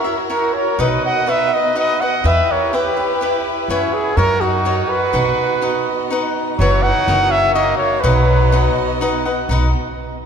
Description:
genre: mexican folk, mariachi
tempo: 124 BPM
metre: 3/4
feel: straight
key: B major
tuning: A4 = 444 Hz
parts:
  - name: bright trumpet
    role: second line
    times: 0.0-9.0 s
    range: F#3 to D#5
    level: -25 LUFS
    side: right 4 dB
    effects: none
  - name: cavaquinho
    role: accompaniment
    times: 0.0-9.7 s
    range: D#4 to F#5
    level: -22 LUFS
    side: left 3 dB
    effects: none
  - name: warm symphonic violin section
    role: sustained chords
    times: 0.0-9.7 s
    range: B3 to D#5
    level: -25 LUFS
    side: right 1 dB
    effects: none
  - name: warm trumpet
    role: melody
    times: 0.3-9.0 s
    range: E4 to F#5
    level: -18 LUFS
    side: equal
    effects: none
  - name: upright bass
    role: bass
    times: 0.8-9.7 s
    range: F#1 to F#2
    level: -19 LUFS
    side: right 1 dB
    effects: none
room: wet church reverb, RT60 3.6 s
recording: recorded in a church or concert hall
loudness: -14 LUFS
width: side -7 dB against mid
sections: 0.0-6.6 A section; 6.6-9.5 B section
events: none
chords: 0.0 F#7; 0.8 B; 2.2 Em; 3.7 F#7sus4; 4.2 F#6; 5.1 B; 6.6 F#7sus4; 7.1 F#6; 8.0 B

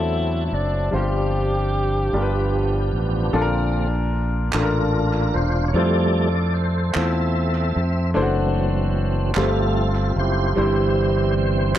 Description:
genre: slow gospel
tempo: 50 BPM (dotted quarters)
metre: 6/8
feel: straight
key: unclear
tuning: A4 = 440 Hz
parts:
  - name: breathy tenor saxophone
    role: melody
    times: 0.0-2.9 s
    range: D4 to G4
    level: -27 LUFS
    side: equal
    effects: tape echo
  - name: clear concert grand piano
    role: accompaniment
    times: 0.0-11.8 s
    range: G2 to C5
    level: -24 LUFS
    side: left 2 dB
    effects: none
  - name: tonewheel organ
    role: sustained chords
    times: 0.0-11.8 s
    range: D3 to E5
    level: -24 LUFS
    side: right 2 dB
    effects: fast rotary speaker, chorus vibrato
  - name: fingered electric bass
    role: bass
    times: 0.0-11.7 s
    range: E1 to F2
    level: -22 LUFS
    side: equal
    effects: none
  - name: group handclap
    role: percussion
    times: 4.5-11.8 s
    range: none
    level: -30 LUFS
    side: right 5 dB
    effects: tape echo
room: light reverb, small room ambience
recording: echo-heavy mix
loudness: -18 LUFS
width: side -11 dB against mid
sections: 0.0-3.3 A section; 3.3-11.8 B section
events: tonewheel organ solo 3.3-11.8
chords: 0.0 D7; 0.9 G7sus4; 2.1 G7; 3.3 Bbmaj7; 5.7 Fmaj7; 8.2 D7/F#; 9.4 G9sus4; 10.6 C/G

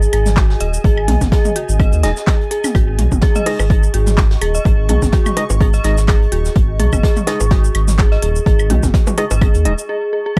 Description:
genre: minimal techno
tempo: 126 BPM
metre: 4/4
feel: swing 55% on 16ths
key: unclear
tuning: A4 = 440 Hz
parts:
  - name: round analog bass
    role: bass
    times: 0.0-10.4 s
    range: D#1 to D#2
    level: -18 LUFS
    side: equal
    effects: sidechain pumping
  - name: techno drum kit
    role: drums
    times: 0.0-9.9 s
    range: handclaps, hi-hat, shaker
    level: -27 LUFS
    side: equal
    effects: none
  - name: ethereal airy pad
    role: texture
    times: 0.0-9.9 s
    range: G#4 to C#6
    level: -29 LUFS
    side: equal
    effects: ensemble chorus, built-in reverb, phaser, sidechain pumping
  - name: dark detuned synth bell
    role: riff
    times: 0.1-10.4 s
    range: F#4 to G#5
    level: -25 LUFS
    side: equal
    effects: chorus, tremolo, sidechain pumping, tape echo
  - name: jazz brush drum kit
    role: drums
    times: 0.1-9.6 s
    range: hi-hat, snare drum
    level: -35 LUFS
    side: equal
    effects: sidechain pumping on hats, high-pass filter on hats, high-pass filter on snare, high-pass filter on room
  - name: electronic woodblock, toms and bongos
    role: percussion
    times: 0.1-10.4 s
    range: none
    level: -25 LUFS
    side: equal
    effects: none
  - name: electronic kick drum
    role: drums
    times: 0.4-10.4 s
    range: none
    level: -16 LUFS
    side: equal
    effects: overdrive
  - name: percussive organ stab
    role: stabs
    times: 2.0-9.7 s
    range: G#3 to D#5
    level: -26 LUFS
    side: equal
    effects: subtle chorus, cassette tape, tape echo
room: light reverb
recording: dry, gritty hardware recording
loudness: -15 LUFS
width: mono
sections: 0.0-10.4 A section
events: break 9.9-10.4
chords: 0.0 G#5

